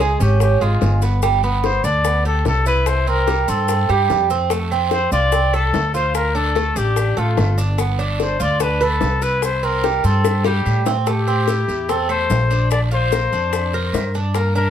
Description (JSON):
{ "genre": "latin, Cuban son and guajira", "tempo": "146 BPM", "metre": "4/4", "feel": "straight", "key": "unclear", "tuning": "A4 = 440 Hz", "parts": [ { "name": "breathy trumpet", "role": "melody", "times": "0.0-14.7 s", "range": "F4 to D5", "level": "-21 LUFS", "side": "left 4 dB", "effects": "plate reverb" }, { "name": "Cuban tres", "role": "arpeggios", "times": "0.0-14.7 s", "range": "G3 to B4", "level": "-22 LUFS", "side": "right 8 dB", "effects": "none" }, { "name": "upright bass", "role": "bass", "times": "0.0-14.7 s", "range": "G1 to A2", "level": "-19 LUFS", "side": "equal", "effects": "none" }, { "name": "guiro", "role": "percussion", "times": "0.0-14.7 s", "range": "none", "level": "-36 LUFS", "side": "right 4 dB", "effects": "none" }, { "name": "maracas", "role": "percussion", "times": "0.0-14.7 s", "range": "none", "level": "-37 LUFS", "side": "left 7 dB", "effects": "none" }, { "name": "bongos", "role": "percussion", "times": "0.2-14.7 s", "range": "none", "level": "-24 LUFS", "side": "left 9 dB", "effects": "none" }, { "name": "claves", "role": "percussion", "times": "4.7-14.7 s", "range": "none", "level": "-37 LUFS", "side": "left 2 dB", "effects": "none" } ], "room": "light reverb", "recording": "none", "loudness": "-16 LUFS", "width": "side -9 dB against mid", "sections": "0.0-11.1 A section; 11.1-14.7 B section", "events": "drum fill 10.2-11.1", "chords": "0.0 Db; 1.2 G; 2.9 C5; 4.5 F; 6.1 Dm; 7.8 G7; 9.4 C5; 11.1 Am7; 12.7 Bbadd9" }